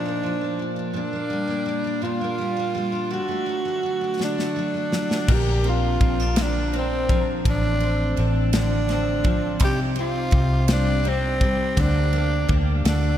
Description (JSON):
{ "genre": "six-eight pop ballad", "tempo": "56 BPM (dotted quarters)", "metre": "6/8", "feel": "straight", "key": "G minor", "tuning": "A4 = 441 Hz", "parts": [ { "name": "growling tenor saxophone", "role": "melody", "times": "0.0-13.2 s", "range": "C4 to G4", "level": "-26 LUFS", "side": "right 1 dB", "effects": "analog delay" }, { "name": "picked steel-string acoustic guitar", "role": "accompaniment", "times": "0.0-13.2 s", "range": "A2 to D4", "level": "-27 LUFS", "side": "left 1 dB", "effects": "double-tracked left and right" }, { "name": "modern studio drum kit", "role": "drums", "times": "4.2-13.0 s", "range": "crash cymbal, kick drum, ride cymbal, snare drum", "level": "-24 LUFS", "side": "equal", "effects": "none" }, { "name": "direct-recorded clean electric guitar", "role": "arpeggios", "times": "5.3-13.2 s", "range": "A2 to Bb4", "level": "-34 LUFS", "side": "left 4 dB", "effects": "ensemble chorus, analog delay" }, { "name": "vintage muted fingered electric bass", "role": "bass", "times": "5.3-13.2 s", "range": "A1 to D2", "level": "-23 LUFS", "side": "equal", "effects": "none" } ], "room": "moderate lush hall reverb, RT60 3.2 s", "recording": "dreamy mix soaked in reverb", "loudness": "-20 LUFS", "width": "side -11 dB against mid", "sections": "0.0-5.3 A section; 5.3-13.2 B section", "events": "drum fill 4.2-5.3", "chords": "0.0 Bb; 1.0 Gm/Bb; 3.1 D; 5.3 Bbadd9; 7.5 F6/A; 9.6 Cm; 11.8 Gm/D" }